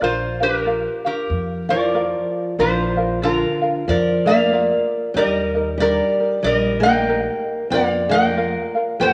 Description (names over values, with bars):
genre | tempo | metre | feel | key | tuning
Hawaiian | 94 BPM | 4/4 | swing 60% on 8ths | Bb major | A4 = 440 Hz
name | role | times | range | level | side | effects
lap resonator guitar | melody | 0.0-9.1 s | F4 to G5 | -22 LUFS | equal | none
ukulele | accompaniment | 0.0-9.1 s | Eb4 to F5 | -26 LUFS | equal | none
upright bass | bass | 0.0-9.1 s | Bb1 to F2 | -30 LUFS | equal | none
picked old ladder-braced acoustic guitar | second line | 1.7-9.1 s | D3 to Bb3 | -25 LUFS | equal | none
room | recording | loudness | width
wet recital hall reverb, RT60 1.7 s | worn, warbling old tape, cassette tape, warbly pitch drift | -19 LUFS | mono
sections
0.0-2.6 A section; 2.6-9.1 A section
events
none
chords
0.0 Bb; 5.2 Eb; 7.7 Bb/F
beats
| 0.02 0.66 1.30 1.95 | 2.59 3.23 3.87 4.51 | 5.15 5.79 6.43 7.08 | 7.72 8.36 9.00